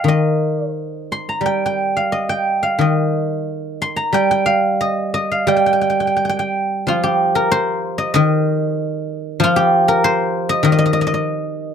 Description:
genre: chinese traditional, Chinese solo plucked strings.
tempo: 84-98 BPM.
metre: 2/4.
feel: rubato.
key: G jue mode.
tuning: A4 = 440 Hz.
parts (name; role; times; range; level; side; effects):
guzheng; solo; 0.0-11.7 s; Eb3 to C6; -15 LUFS; equal; none.
room: little or no reverb.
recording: close, detailed microphones.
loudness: -15 LUFS.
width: side -7 dB against mid.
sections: 0.0-6.9 A section; 6.9-11.7 B section.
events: none.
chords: none.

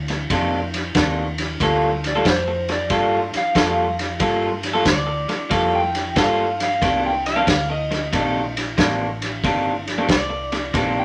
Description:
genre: electric blues shuffle.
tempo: 92 BPM.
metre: 4/4.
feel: swing 66% on 8ths.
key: G minor.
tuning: A4 = 440 Hz.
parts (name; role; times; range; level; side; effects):
hollow-body short-scale fingered electric bass; bass; 0.0-11.0 s; G1 to G2; -31 LUFS; equal; none.
electric guitar through a small old amp; riff; 0.1-11.0 s; C3 to A4; -24 LUFS; equal; none.
vintage drum kit; drums; 0.1-10.9 s; kick drum, ride cymbal, snare drum; -25 LUFS; equal; none.
electric slide guitar; melody; 2.1-11.0 s; C5 to G5; -26 LUFS; equal; none.
room: wet studio reverb, RT60 0.6 s.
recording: none.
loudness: -20 LUFS.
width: mono.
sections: 0.0-11.0 A section.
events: none.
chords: 0.0 Cm9; 1.6 Gm9; 6.8 Cm9.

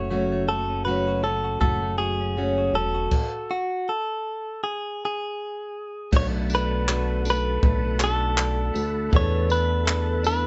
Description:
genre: acoustic pop.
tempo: 80 BPM.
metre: 4/4.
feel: swing 55% on 16ths.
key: unclear.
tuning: A4 = 439 Hz.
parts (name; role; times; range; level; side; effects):
direct-recorded clean electric guitar; melody; 0.0-10.5 s; F#4 to C#5; -29 LUFS; equal; none.
fingerpicked plugged-in steel-string acoustic guitar; accompaniment; 0.0-10.5 s; F#2 to A4; -31 LUFS; equal; none.
direct-recorded clean electric guitar; arpeggios; 0.0-10.5 s; E3 to A4; -36 LUFS; equal; none.
chorused synth bass; bass; 0.0-10.5 s; E1 to E2; -29 LUFS; equal; none.
compact cocktail drum kit; drums; 1.6-10.4 s; crash cymbal, handclaps, kick drum, tambourine; -26 LUFS; equal; none.
tonewheel organ; sustained chords; 6.1-10.5 s; A4 to B5; -40 LUFS; equal; chorus vibrato, slow rotary speaker.
room: light reverb.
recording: band playing live in one room, nothing above 7.9 kHz.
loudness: -24 LUFS.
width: mono.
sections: 0.0-6.1 A section; 6.1-10.5 B section.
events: stop 3.1-6.1.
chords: 0.0 F#m; 3.1 N.C.; 6.1 Bm7; 9.1 E7sus4.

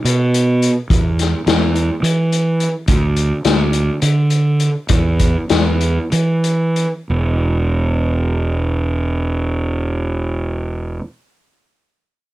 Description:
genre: psychedelic rock.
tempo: 179-213 BPM (eighths).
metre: 7/8.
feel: straight.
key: unclear.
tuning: A4 = 440 Hz.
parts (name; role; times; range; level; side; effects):
fuzz fingered electric bass; bass; 0.0-11.0 s; E1 to E3; -16 LUFS; right 1 dB; overdrive.
vintage drum kit; drums; 0.1-6.9 s; hi-hat, kick drum, snare drum; -18 LUFS; left 2 dB; none.
room: little or no reverb.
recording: 1960s-style stereo.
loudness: -14 LUFS.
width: side -16 dB against mid.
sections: 0.0-7.1 A section; 7.1-11.8 B section.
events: slowing down 2.9-7.1.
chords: none.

